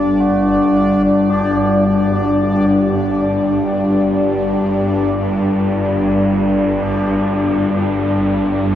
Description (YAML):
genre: dark ambient drone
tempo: 54 BPM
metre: 4/4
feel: straight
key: unclear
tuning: A4 = 439 Hz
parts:
  - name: dark analog pad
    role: sustained chords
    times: 0.0-8.8 s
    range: G3 to D4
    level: -16 LUFS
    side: left 1 dB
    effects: chorus
  - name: swarming drone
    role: drone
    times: 0.0-8.8 s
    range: G1 to G2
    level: -21 LUFS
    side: equal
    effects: built-in reverb
  - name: bubbling stepped-filter texture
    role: texture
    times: 0.0-8.8 s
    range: D4 to D5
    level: -20 LUFS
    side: left 1 dB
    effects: chorus, built-in reverb
  - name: tubular bells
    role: arpeggios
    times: 0.2-8.8 s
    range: D4 to F#4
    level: -28 LUFS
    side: right 2 dB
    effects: ping-pong delay
room: wet huge ambient reverb, RT60 8.8 s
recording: worn, warbling old tape, cassette tape, warbly pitch drift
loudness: -13 LUFS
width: side -11 dB against mid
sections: 0.0-8.8 A section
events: none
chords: 0.0 G5